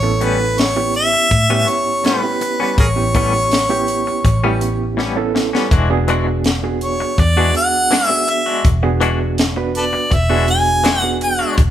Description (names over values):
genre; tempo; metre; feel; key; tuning
straight-eighth soul blues; 82 BPM; 4/4; straight; A major; A4 = 440 Hz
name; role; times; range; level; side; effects
clear harmonica; melody; 0.0-11.6 s; G#4 to G#5; -17 LUFS; equal; none
overdriven reed electric piano; accompaniment; 0.0-11.6 s; B3 to B4; -22 LUFS; right 5 dB; fast tremolo
direct-recorded clean electric guitar; stabs; 0.0-11.6 s; A2 to F#4; -22 LUFS; left 5 dB; tremolo
vintage muted fingered electric bass; bass; 0.0-11.7 s; E1 to A2; -19 LUFS; equal; none
tight funk drum kit; drums; 0.2-11.7 s; hi-hat, kick drum, snare drum; -18 LUFS; equal; none
room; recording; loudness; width
moderate large studio reverb, RT60 1.1 s; band playing live in one room, faint mains hum; -14 LUFS; side -11 dB against mid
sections
0.0-11.7 A section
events
drum fill 5.0-5.7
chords
0.0 A9; 5.7 E9